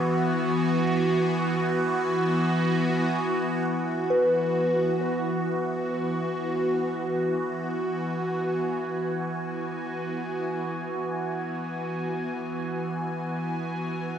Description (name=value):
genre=ambient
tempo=free time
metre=none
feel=none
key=E major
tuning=A4 = 442 Hz
part: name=evolving wavetable pad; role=sustained chords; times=0.0-14.2 s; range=E3 to G#5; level=-25 LUFS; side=equal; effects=phaser, built-in reverb
part: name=soft synth bell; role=arpeggios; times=0.0-14.2 s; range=B4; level=-28 LUFS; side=left 1 dB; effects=chorus, phaser, tape echo
room=wet lush hall reverb, RT60 2.9 s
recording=dark, warm production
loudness=-24 LUFS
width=side -8 dB against mid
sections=0.0-3.7 A section; 3.7-14.2 B section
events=none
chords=0.0 E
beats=free time